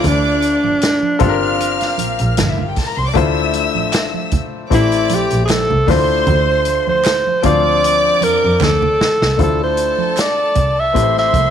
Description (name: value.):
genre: lush 1970s-style soul.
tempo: 77 BPM.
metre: 4/4.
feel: swing 54% on 16ths.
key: D minor.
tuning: A4 = 438 Hz.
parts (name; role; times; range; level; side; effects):
warm alto saxophone; melody; 0.0-11.5 s; D4 to E5; -15 LUFS; right 1 dB; none.
warm studio violin section; second line; 0.0-11.5 s; E4 to F6; -23 LUFS; equal; none.
warm concert grand piano; accompaniment; 0.0-11.5 s; F3 to C5; -21 LUFS; left 12 dB; tube saturation.
rich double bass; bass; 0.0-11.5 s; G1 to F2; -19 LUFS; right 1 dB; none.
vintage drum kit; drums; 0.0-11.5 s; hi-hat, kick drum, snare drum; -20 LUFS; equal; none.
congas; percussion; 0.0-11.5 s; none; -26 LUFS; right 11 dB; none.
group handclap; percussion; 3.9-10.4 s; none; -29 LUFS; right 12 dB; none.
room: light reverb, small room ambience.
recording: 1960s-style stereo with parts hard left and right.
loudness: -13 LUFS.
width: side -8 dB against mid.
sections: 0.0-9.4 A section; 9.4-11.5 B section.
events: alto saxophone solo 0.0-9.4; drum fill 8.6-9.4.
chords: 0.0 Dm9; 1.2 Gm11; 3.2 Dm9; 4.7 Am7; 5.9 Dm9; 7.4 Dm7; 9.4 Dm9; 11.0 Am7.